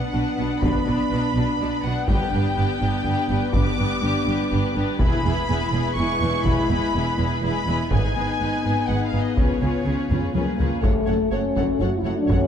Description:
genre	cinematic, epic orchestral film score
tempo	123 BPM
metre	3/4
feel	straight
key	unclear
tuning	A4 = 441 Hz
part	rich symphonic violin section	melody	0.0-12.4 s	C#5 to D6	-28 LUFS	left 2 dB	none
part	rich symphonic violin section	second line	0.0-12.4 s	D4 to C#5	-31 LUFS	left 2 dB	none
part	rich symphonic viola section	accompaniment	0.0-12.4 s	B3 to A4	-30 LUFS	equal	none
part	dark French horn section	sustained chords	0.0-12.5 s	G#3 to F#4	-26 LUFS	left 3 dB	none
part	clear symphonic double bass section	bass	0.1-12.4 s	E1 to C#2	-26 LUFS	right 3 dB	none
part	rich symphonic cello section	bass	0.1-12.4 s	E2 to C#3	-28 LUFS	right 2 dB	none
part	taiko ensemble	drums	0.6-12.5 s	none	-24 LUFS	equal	none
part	mellow trombone section	sustained chords	10.8-12.5 s	F#3 to A3	-30 LUFS	right 5 dB	none
room	moderate scoring stage reverb, RT60 1.9 s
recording	dark, warm production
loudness	-20 LUFS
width	side -8 dB against mid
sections	0.0-10.8 A section; 10.8-12.5 B section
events	drum fill 10.1-10.8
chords	0.0 Bm; 2.1 G; 5.0 E; 7.9 G#m; 9.4 C#7; 10.8 F#m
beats	0.14 | 0.62 1.11 1.60 | 2.08 2.57 3.06 | 3.54 4.03 4.51 | 5.00 5.49 5.97 | 6.46 6.94 7.43 | 7.92 8.40 8.89 | 9.38 9.86 10.35 | 10.83 11.32 11.80 | 12.29

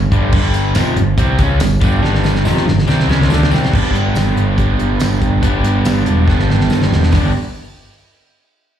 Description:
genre	classic rock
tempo	141 BPM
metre	4/4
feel	straight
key	G major from 3.7 s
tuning	A4 = 440 Hz
part	crunchy overdriven guitar	riff	0.0-7.3 s	F2 to G4	-20 LUFS	left 12 dB	spring reverb, slapback echo
part	distorted electric guitar	riff	0.0-7.3 s	F2 to D4	-18 LUFS	right 12 dB	distortion, slapback echo
part	growling picked electric bass	bass	0.0-7.3 s	E1 to D2	-15 LUFS	equal	overdrive
part	damped 70s drum kit	drums	0.1-7.2 s	crash cymbal, hi-hat, kick drum, snare drum, tambourine	-17 LUFS	equal	none
part	tambourine	percussion	0.5-7.3 s	none	-38 LUFS	left 5 dB	none
room	light reverb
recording	live gig heard through the venue's PA, club reverb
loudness	-12 LUFS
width	side -10 dB against mid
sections	0.0-3.7 A section; 3.7-7.1 B section; 7.1-8.8 C section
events	drum fill 2.0-3.7, 6.3-7.1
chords	0.0 G5; 3.7 G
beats	| 0.33 0.75 1.18 1.60 | 2.02 2.45 2.88 3.30 | 3.73 4.15 4.58 5.00 | 5.43 5.86 6.28 6.71 | 7.13

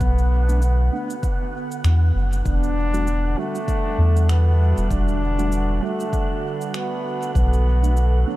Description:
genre	ambient dub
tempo	98 BPM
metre	4/4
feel	swing 58% on 16ths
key	E minor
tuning	A4 = 440 Hz
part	warm trombone	melody	0.0-8.4 s	F#3 to D4	-27 LUFS	left 1 dB	dub echo
part	warbly tape-like pad	sustained chords	0.0-8.4 s	D3 to A4	-30 LUFS	right 2 dB	chorus, built-in reverb, phaser
part	soft dub sub bass	bass	0.0-8.2 s	E1 to E2	-17 LUFS	equal	tube saturation
part	electronic cabasa and finger snaps	drums	0.0-8.1 s	none	-38 LUFS	equal	studio reverb, dub echo
part	electronic kick drum	drums	0.0-7.5 s	none	-24 LUFS	equal	studio reverb
part	wind-like tuned noise texture	texture	0.0-8.4 s	F#5	-34 LUFS	right 4 dB	built-in reverb
part	mellow tine electric piano	stabs	0.5-8.4 s	G3 to F#4	-34 LUFS	right 3 dB	none
room	little or no reverb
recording	dark, warm production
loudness	-18 LUFS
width	side -16 dB against mid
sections	0.0-8.4 A section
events	none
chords	0.0 Bm7; 2.5 Em11; 7.4 Bm7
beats	| 0.01 0.62 1.23 1.84 | 2.45 3.07 3.68 4.29 | 4.90 5.52 6.13 6.74 | 7.35 7.96

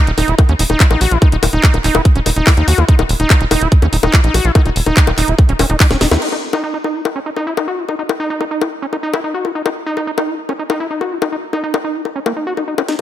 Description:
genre	psychedelic trance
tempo	144 BPM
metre	4/4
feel	straight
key	Eb phrygian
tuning	A4 = 440 Hz
part	overdriven acid bass	riff	0.0-13.0 s	Bb3 to Gb4	-19 LUFS	moving between left 5 dB and right 5 dB	distortion, auto-pan, sidechain pumping, ping-pong delay
part	tight sequencer bass	bass	0.1-6.2, 13.0 s	Eb1 to Eb2	-15 LUFS	equal	high-pass filter
part	garage drum kit	drums	0.1-13.0 s	bongos, crash cymbal, handclaps, hi-hat, snare drum	-18 LUFS	left 4 dB	high-pass filter on hats, high-pass filter on perc, high-pass filter on snare, high-pass filter on cymbals
part	electronic kick drum	drums	0.4-5.9 s	none	-10 LUFS	equal	none
room	light reverb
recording	none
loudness	-12 LUFS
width	side -12 dB against mid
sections	0.0-6.2 A section; 6.2-12.9 B section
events	drop 0.0-6.2; drum fill 5.9-6.2; band accent 6.1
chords	0.0 Eb5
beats	0.39 0.80 | 1.22 1.64 2.05 2.47 | 2.88 3.30 3.72 4.13 | 4.55 4.97 5.38 5.80 | 6.22 6.63 7.05 7.47 | 7.88 8.30 8.72 9.13 | 9.55 9.97 10.38 10.80 | 11.22 11.63 12.05 12.47 | 12.88

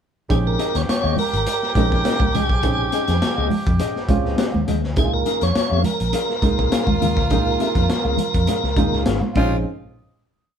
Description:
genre	funk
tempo	103 BPM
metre	4/4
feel	straight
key	Bb dorian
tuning	A4 = 440 Hz
part	tonewheel organ	melody	0.3-9.0 s	Ab4 to Db5	-23 LUFS	right 2 dB	overdrive, fast rotary speaker
part	raspy tenor saxophone	second line	0.3-9.6 s	F4 to G4	-28 LUFS	right 2 dB	none
part	warm upright piano	stabs	0.3-9.6 s	Ab3 to Ab4	-25 LUFS	right 3 dB	none
part	vintage muted fingered electric bass	bass	0.3-9.6 s	Ab1 to F2	-23 LUFS	equal	none
part	crunchy breakbeat drum kit	drums	0.3-9.5 s	crash cymbal, hi-hat, kick drum, snare drum	-23 LUFS	left 1 dB	none
part	mellow electric guitar	accompaniment	0.6-9.6 s	Db4 to F5	-27 LUFS	left 7 dB	tremolo
part	congas	percussion	0.9-9.6 s	none	-25 LUFS	right 2 dB	none
room	light reverb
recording	band playing live in one room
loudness	-17 LUFS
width	side -8 dB against mid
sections	0.3-9.7 A section; 9.7-10.6 final hit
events	none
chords	0.3 Bbm11; 5.0 Db6; 9.4 Bbm11; 9.7 N.C.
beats	| 0.30 0.88 1.47 2.05 | 2.64 3.22 3.81 4.39 | 4.97 5.56 6.14 6.73 | 7.31 7.90 8.48 9.07

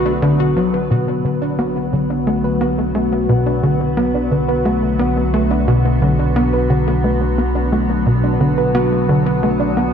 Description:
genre	ambient, sequencer-driven space music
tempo	88 BPM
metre	4/4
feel	straight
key	B minor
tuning	A4 = 439 Hz
part	evolving wavetable pad	sustained chords	0.0-9.9 s	D3 to B4	-20 LUFS	equal	chorus, built-in reverb
part	tight sequencer bass	riff	0.0-9.9 s	B2 to F#4	-17 LUFS	equal	lush chorus, ping-pong delay
part	analog drone	bass	0.0-9.9 s	B1	-23 LUFS	equal	chorus
part	soft round pluck	arpeggios	0.1-9.9 s	B2 to B4	-24 LUFS	moving between left 2 dB and right 6 dB	chorus, auto-pan, ping-pong delay
room	wet scoring stage reverb, RT60 1.9 s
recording	dark, warm production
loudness	-14 LUFS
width	side -7 dB against mid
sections	0.0-9.9 A section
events	none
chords	0.0 Bm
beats	0.22 | 0.91 1.59 2.27 2.95 | 3.63 4.31 5.00 5.68 | 6.36 7.04 7.72 8.40 | 9.09 9.77

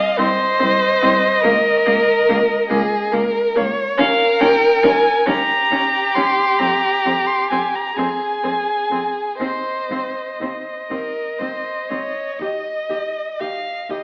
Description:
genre	classical, slow romantic movement for string quartet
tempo	39-48 BPM (dotted quarters)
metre	12/8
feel	rubato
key	unclear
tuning	A4 = 440 Hz
part	warm violin	melody	0.0-14.0 s	Eb5 to C6	-23 LUFS	equal	none
part	warm violin	second line	0.0-14.0 s	G4 to F5	-22 LUFS	equal	none
part	rich viola	accompaniment	0.2-14.0 s	Bb3 to G4	-26 LUFS	equal	none
part	rich cello	bass	0.2-14.0 s	C2 to F2	-29 LUFS	equal	none
room	wet recital hall reverb, RT60 1.3 s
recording	AM radio sound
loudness	-18 LUFS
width	mono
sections	0.0-14.0 A section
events	none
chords	0.0 Ab/C (rootless); 1.4 Bbm/Db; 4.0 Eb7; 6.6 Fm; 9.4 Cm/Eb; 12.4 Eb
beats	0.18 1.44 2.70 | 3.99 5.27 6.60 7.96 | 9.40 10.89 12.39 13.89

